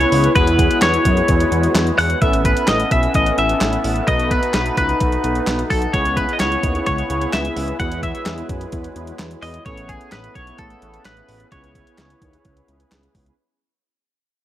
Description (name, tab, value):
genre	synth-pop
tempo	129 BPM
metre	4/4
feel	straight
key	C# minor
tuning	A4 = 440 Hz
part	twelve-string electric guitar	melody	0.0-13.1 s	G#4 to F#5	-20 LUFS	left 1 dB	none
part	analog synth brass	accompaniment	0.0-13.3 s	B3 to B4	-25 LUFS	equal	chorus
part	dark woodwind section	sustained chords	0.0-13.4 s	C#3 to E4	-25 LUFS	left 2 dB	none
part	fat analog bass	bass	0.0-13.3 s	A1 to F#2	-22 LUFS	equal	none
part	detuned 8-bit digital drum machine	drums	0.0-13.4 s	handclaps, hi-hat, kick drum, snare drum	-21 LUFS	equal	none
room	light reverb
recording	none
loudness	-15 LUFS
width	side -12 dB against mid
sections	0.0-13.4 A section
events	fade-out 0.0-13.4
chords	0.4 Eadd9; 2.2 Aadd9; 4.1 B7; 5.9 C#m7; 7.8 Eadd9; 9.7 Aadd9; 11.5 C#m7